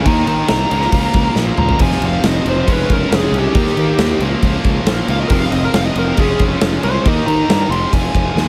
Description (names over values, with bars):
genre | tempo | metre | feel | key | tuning
hard rock | 138 BPM | 4/4 | straight | F minor | A4 = 440 Hz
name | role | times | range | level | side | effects
bluesy overdriven lead guitar | melody | 0.0-8.5 s | G4 to C6 | -22 LUFS | equal | distortion, digital delay
distorted electric guitar | riff | 0.0-8.5 s | F2 to Eb4 | -26 LUFS | equal | overdrive
high-gain distorted guitar | riff | 0.0-8.5 s | F2 to Eb4 | -24 LUFS | equal | distortion
tight distorted guitar | riff | 0.0-8.5 s | Db3 to G4 | -29 LUFS | equal | none
fuzz fingered electric bass | bass | 0.0-8.5 s | F1 to Eb3 | -21 LUFS | equal | overdrive
huge arena drum kit | drums | 0.1-8.5 s | crash cymbal, kick drum, snare drum, toms | -20 LUFS | equal | none
room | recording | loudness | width
light reverb | none | -15 LUFS | mono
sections
0.0-8.5 A section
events
lead electric guitar solo 0.0-8.5; drum fill 1.4-1.8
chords
0.1 Eb; 0.7 Bbm/Db; 1.8 Fm; 2.7 Db/F; 3.6 Eb; 4.2 Bbm/Db; 5.3 Fm; 6.2 Db/F; 7.0 Eb; 7.7 Fm